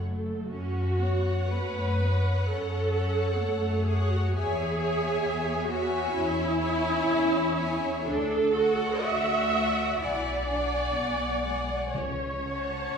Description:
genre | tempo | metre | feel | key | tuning
classical, slow romantic movement for symphony orchestra | 63 BPM | 4/4 | uneven beats, rubato | F# minor | A4 = 439 Hz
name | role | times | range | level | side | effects
dark studio viola section | accompaniment | 0.0-13.0 s | A3 to E5 | -28 LUFS | right 2 dB | none
rich studio cello section | bass | 0.0-13.0 s | F#2 to F#4 | -36 LUFS | equal | none
rich studio double bass section | bass | 0.0-13.0 s | F#1 to F#2 | -30 LUFS | left 1 dB | none
rich studio violin section | melody | 1.0-13.0 s | F#5 to A5 | -38 LUFS | left 6 dB | none
rich studio violin section | second line | 1.0-13.0 s | C#5 to F#5 | -35 LUFS | left 3 dB | none
timpani | percussion | 11.9-13.0 s | C#3 | -38 LUFS | left 2 dB | none
room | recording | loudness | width
wet recital hall reverb, RT60 1.4 s | minimal, uncompressed stereo recording | -25 LUFS | side -6 dB against mid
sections
0.5-13.0 A section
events
none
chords
0.0 F#m; 4.3 C#m/E; 8.1 D; 10.0 G#m7b5/B; 11.9 F#m/C#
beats
| 0.51 1.53 2.49 3.42 | 4.34 5.25 6.15 7.07 | 8.06 9.06 10.01 10.95 | 11.94 12.95

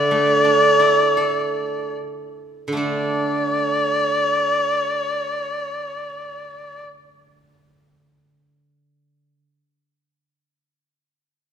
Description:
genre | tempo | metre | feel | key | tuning
chinese traditional, Chinese chamber ensemble | 70-91 BPM | 4/4 | rubato | unclear | A4 = 435 Hz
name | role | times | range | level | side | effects
warm erhu | melody | 0.0-6.8 s | D5 | -19 LUFS | left 1 dB | none
steel-string zither | accompaniment | 0.0-9.3 s | D3 to A4 | -23 LUFS | right 4 dB | none
room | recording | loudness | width
moderate scoring stage reverb, RT60 1.6 s | recorded in a church or concert hall | -17 LUFS | side -8 dB against mid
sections
0.0-2.8 A section; 2.8-6.1 B section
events
slowing down 0.0-2.8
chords
none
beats
0.42 1.14 1.94 | 2.79 3.64 4.47 5.30

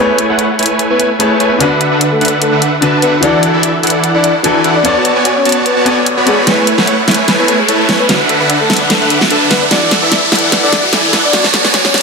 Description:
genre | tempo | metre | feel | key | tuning
future bass | 148 BPM | 4/4 | swing 54% on 16ths, half-time | A major | A4 = 441 Hz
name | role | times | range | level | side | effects
soft octave-layered synth lead | melody | 0.0-12.0 s | G#4 to D5 | -18 LUFS | left 2 dB | chorus, tremolo, ping-pong delay
clear grand piano | accompaniment | 0.0-6.5 s | D3 to D5 | -15 LUFS | left 3 dB | vintage 12-bit sampler grit, ping-pong delay
supersaw chords | riff | 0.0-12.0 s | D3 to B5 | -12 LUFS | right 2 dB | low-pass filter
riser | sound effects | 3.5-12.0 s | none | -17 LUFS | equal | none
pop drum kit | drums | 0.2-12.0 s | hi-hat, snare drum | -14 LUFS | equal | soft clipping on snare, small room ambience
soft round pluck | arpeggios | 6.5-12.0 s | F#4 to F#5 | -23 LUFS | left 2 dB | chorus, cassette tape, ping-pong delay
room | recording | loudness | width
moderate digital room reverb, RT60 1.0 s | dense, heavily limited modern master, high-pass filter | -9 LUFS | side -4 dB against mid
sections
0.0-12.0 A section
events
build-up 0.0-12.0; filter sweep 0.0-12.0; riser 3.5-12.0; drum fill 6.5-12.0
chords
0.0 Amaj9; 1.6 D6; 3.2 E9sus4; 4.8 Bm9; 6.5 Amaj9; 8.1 D6; 9.7 E9sus4; 11.3 Bm9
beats
0.39 0.79 1.20 | 1.60 2.01 2.42 2.82 | 3.23 3.63 4.04 4.44 | 4.85 5.25 5.66 6.06 | 6.47 6.88 7.28 7.69 | 8.09 8.50 8.90 9.31 | 9.71 10.12 10.52 10.93 | 11.33 11.74

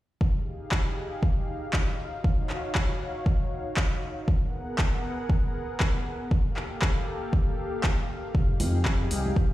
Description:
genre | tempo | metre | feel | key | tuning
deep house | 118 BPM | 4/4 | swing 59% on 16ths | unclear | A4 = 439 Hz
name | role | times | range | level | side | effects
warm analog pad | sustained chords | 0.4-9.5 s | Bb3 to Gb5 | -35 LUFS | left 1 dB | chorus, sidechain pumping
electronic kick drum | drums | 0.2-9.5 s | none | -26 LUFS | equal | overdrive
deep house drum kit | drums | 0.7-9.2 s | handclaps, hi-hat | -32 LUFS | equal | overdrive
smooth gliding synth bass | bass | 8.3-9.5 s | F1 to F2 | -26 LUFS | equal | sidechain pumping
congas | percussion | 8.6-9.3 s | none | -34 LUFS | right 2 dB | sidechain pumping on perc
room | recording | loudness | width
digital ambience | played on a big sound system in a bare room, stone room reverb | -25 LUFS | side -15 dB against mid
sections
0.2-9.5 A section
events
none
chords
0.2 Fm9; 2.0 Ebm9; 4.3 Abm9; 6.3 Gm9; 8.3 Fm9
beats
| 0.21 0.72 1.23 1.74 | 2.24 2.75 3.26 3.77 | 4.28 4.79 5.29 5.80 | 6.31 6.82 7.33 7.84 | 8.35 8.85 9.36

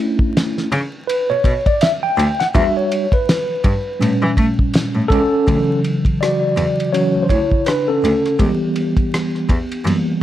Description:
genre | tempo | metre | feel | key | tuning
hip hop, jazz-hop | 82 BPM | 4/4 | swing 59% on 16ths | D major | A4 = 441 Hz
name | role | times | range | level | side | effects
mellow tine electric piano | accompaniment | 0.0-10.2 s | Bb2 to G5 | -17 LUFS | equal | medium stereo tremolo
cloth-damped thuddy drum kit | drums | 0.2-10.1 s | hi-hat, kick drum, ride cymbal, rim click, snare drum | -20 LUFS | equal | none
clear cello | bass | 0.7-9.9 s | C#2 to A3 | -20 LUFS | equal | none
room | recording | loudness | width
moderate plate reverb, RT60 2.0 s, studio ambience | vinyl crackle | -14 LUFS | side -12 dB against mid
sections
0.0-5.5 A section; 5.5-10.2 B section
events
tine electric piano solo 0.0-5.5, 5.5-10.2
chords
0.0 Bm11; 2.5 Em7; 4.0 A7b9; 5.5 Dmaj7; 8.4 C#m7b5 (rootless)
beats
0.35 1.08 1.81 | 2.55 3.28 4.01 4.74 | 5.47 6.21 6.94 7.67 | 8.40 9.13 9.86

